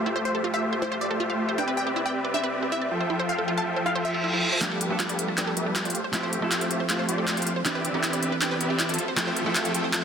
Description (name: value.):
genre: future bass.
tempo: 158 BPM.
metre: 4/4.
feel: half-time.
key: F lydian.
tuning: A4 = 440 Hz.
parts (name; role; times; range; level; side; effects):
wide unison pluck; arpeggios; 0.0-10.0 s; D4 to F5; -32 LUFS; right 2 dB; digital delay.
supersaw chords; riff; 0.0-10.0 s; F3 to A5; -27 LUFS; equal; low-pass filter.
wide unison pluck; melody; 0.3-4.3 s; C5 to A5; -31 LUFS; left 1 dB; cassette tape, dub echo.
reverse cymbal and riser; sound effects; 4.0-10.0 s; none; -34 LUFS; right 1 dB; none.
semi-hollow electric guitar; accompaniment; 4.6-10.0 s; E3 to A4; -31 LUFS; right 2 dB; spring reverb, digital delay.
trap drum kit; drums; 4.6-10.0 s; handclaps, hi-hat; -28 LUFS; equal; overdrive.
room: moderate huge ambient reverb, RT60 7.6 s.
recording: dense, heavily limited modern master.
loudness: -23 LUFS.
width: side -7 dB against mid.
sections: 0.0-4.6 A section; 4.6-10.0 B section.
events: reverse cymbal 4.0-4.6; build-up 4.6-10.0; drum fill 4.6-10.0; filter sweep on supersaw synth 4.6-10.0.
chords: 0.0 Fmaj7/A; 1.6 Cmaj9; 2.9 Fmaj7; 4.6 G9; 5.9 Fmaj7; 7.7 Cmaj9; 9.0 Fmaj7.